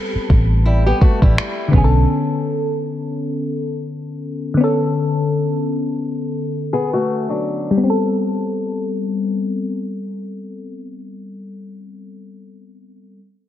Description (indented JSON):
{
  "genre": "contemporary R&B",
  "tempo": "84 BPM",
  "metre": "4/4",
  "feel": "swing 58% on 16ths",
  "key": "A dorian",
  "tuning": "A4 = 443 Hz",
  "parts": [
    { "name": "mellow FM electric piano", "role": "accompaniment", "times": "0.0-13.2 s", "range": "D3 to A4", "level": "-20 LUFS", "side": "left 2 dB", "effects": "chorus, phaser" },
    { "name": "vintage muted fingered electric bass", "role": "bass", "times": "0.2-2.0 s", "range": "A1 to B1", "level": "-15 LUFS", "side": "equal", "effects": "none" },
    { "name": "smooth R&B drum kit", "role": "drums", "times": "0.3-1.9 s", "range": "finger snaps, kick drum", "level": "-15 LUFS", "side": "equal", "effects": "soft clipping on snare" },
    { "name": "fingerpicked old ladder-braced acoustic guitar", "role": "arpeggios", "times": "0.7-1.7, 6.7-7.8 s", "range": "F#3 to G#4", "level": "-21 LUFS", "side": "left 2 dB", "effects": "none" }
  ],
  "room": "light reverb, digital ambience",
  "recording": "dense, heavily limited modern master, low-pass filter",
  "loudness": "-16 LUFS",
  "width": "side -12 dB against mid",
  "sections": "0.0-7.8 A section; 7.8-10.7 B section",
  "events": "filter sweep 0.0-7.8",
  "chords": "0.0 Am9; 1.7 Bm9; 7.8 Am9",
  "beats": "0.66 1.37 | 2.08 2.80 3.51 4.23 | 4.94 5.66 6.37 7.08 | 7.80 8.51 9.23 9.94"
}